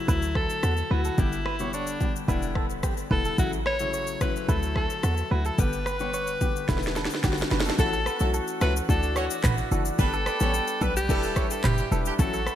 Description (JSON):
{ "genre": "afrobeats", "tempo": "109 BPM", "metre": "4/4", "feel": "straight", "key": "A mixolydian", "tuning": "A4 = 440 Hz", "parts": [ { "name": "breathy alto saxophone", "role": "melody", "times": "0.0-12.6 s", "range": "D4 to C#5", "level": "-30 LUFS", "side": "left 1 dB", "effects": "ping-pong delay" }, { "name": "warm grand piano", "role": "accompaniment", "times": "0.0-12.4 s", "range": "C#3 to B4", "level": "-32 LUFS", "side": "left 4 dB", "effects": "lush chorus" }, { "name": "direct-recorded clean electric guitar", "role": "riff", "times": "0.1-12.6 s", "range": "F#4 to C#5", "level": "-36 LUFS", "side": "right 7 dB", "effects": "tremolo" }, { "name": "short 808-style bass", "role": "bass", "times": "0.1-12.5 s", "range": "E1 to E2", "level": "-28 LUFS", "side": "equal", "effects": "none" }, { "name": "afro-pop drum kit", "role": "drums", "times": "0.1-12.6 s", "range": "handclaps, kick drum, rim click, shaker, snare drum, toms", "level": "-28 LUFS", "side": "equal", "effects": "gated reverb" }, { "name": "warm horn section", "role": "second line", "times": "7.8-12.1 s", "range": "E3 to D5", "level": "-35 LUFS", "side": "right 3 dB", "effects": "none" }, { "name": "mellow accordion", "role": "sustained chords", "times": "7.8-12.6 s", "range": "G4 to E6", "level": "-36 LUFS", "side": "right 6 dB", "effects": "none" } ], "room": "light reverb, small room ambience", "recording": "bright 1980s-style digital production", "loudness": "-23 LUFS", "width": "side -11 dB against mid", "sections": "0.0-7.8 A section; 7.8-12.6 B section", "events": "drum fill 6.7-7.8", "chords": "0.1 Dadd9; 1.2 G; 2.3 Em7; 3.4 A6; 4.5 Dadd9; 5.6 G; 6.7 Em7; 7.2 Gmaj7; 7.8 A6; 8.9 Dadd9; 10.0 G; 11.1 Em7" }